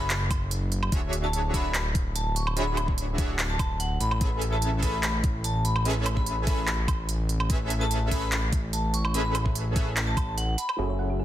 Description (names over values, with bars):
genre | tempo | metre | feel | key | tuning
future bass | 146 BPM | 4/4 | half-time | A major | A4 = 443 Hz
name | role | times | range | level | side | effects
vibraphone with hard mallets | melody | 0.0-10.8 s | F#5 to C#6 | -33 LUFS | left 1 dB | sidechain pumping, digital delay
fat analog bass | bass | 0.0-11.2 s | D1 to A1 | -28 LUFS | equal | sidechain pumping
big-room dance drum kit | drums | 0.1-10.8 s | handclaps, hi-hat, woodblock | -31 LUFS | right 2 dB | overdrive
electronic kick drum | drums | 0.3-10.3 s | none | -27 LUFS | equal | none
supersaw stab | riff | 0.9-11.2 s | C#4 to E5 | -33 LUFS | right 1 dB | sidechain pumping, low-pass filter, digital delay
warm grand piano | accompaniment | 10.8-11.2 s | F#3 to G#5 | -39 LUFS | right 2 dB | none
thumb-piano-like synth pluck | arpeggios | 10.8-11.2 s | F#4 to F#5 | -37 LUFS | right 2 dB | chorus, sidechain pumping
room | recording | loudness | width
little or no reverb | dense, heavily limited modern master | -24 LUFS | side -12 dB against mid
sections
0.0-10.8 A section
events
drop 0.0-10.8; kick drops out 10.4-10.8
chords
0.0 N.C.; 0.9 Dmaj9#11; 4.0 Amaj9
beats
0.10 0.51 | 0.92 1.33 1.75 2.16 | 2.57 2.98 3.39 3.80 | 4.21 4.62 5.03 5.44 | 5.85 6.26 6.68 7.09 | 7.50 7.91 8.32 8.73 | 9.14 9.55 9.96 10.38 | 10.79 11.20